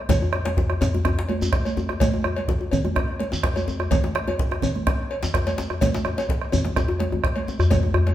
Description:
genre	west african traditional, West African drum ensemble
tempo	126 BPM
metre	4/4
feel	straight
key	none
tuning	none
part	bombo	percussion	0.1-8.1 s	none	-25 LUFS	right 1 dB	none
part	congas	percussion	0.1-8.1 s	none	-29 LUFS	right 3 dB	none
part	cowbell	percussion	0.1-8.1 s	none	-30 LUFS	equal	none
part	djembe	percussion	0.1-8.1 s	none	-30 LUFS	left 3 dB	none
part	djembe	percussion	0.1-8.1 s	none	-25 LUFS	left 2 dB	none
part	shekere	percussion	0.1-7.8 s	none	-33 LUFS	equal	none
room	wet large studio reverb, RT60 1.4 s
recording	band playing live in one room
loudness	-20 LUFS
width	side -12 dB against mid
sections	0.1-8.1 A section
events	none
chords	none

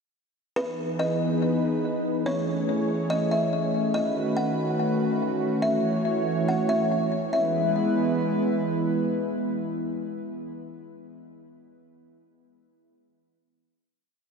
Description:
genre	hip hop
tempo	142 BPM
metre	4/4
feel	half-time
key	E major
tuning	A4 = 440 Hz
part	buzzing kalimba	melody	0.6-8.6 s	B4 to F#5	-28 LUFS	left 1 dB	ping-pong delay
part	warm analog pad	sustained chords	0.6-10.5 s	D#3 to C#5	-25 LUFS	right 1 dB	chorus
room	wet huge ambient reverb, RT60 5.1 s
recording	dreamy mix soaked in reverb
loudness	-23 LUFS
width	side -5 dB against mid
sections	0.6-7.3 breakdown; 7.3-10.7 final chord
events	none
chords	0.6 Emaj7; 2.3 Amaj7; 3.9 B9; 5.6 F#m7; 7.3 E

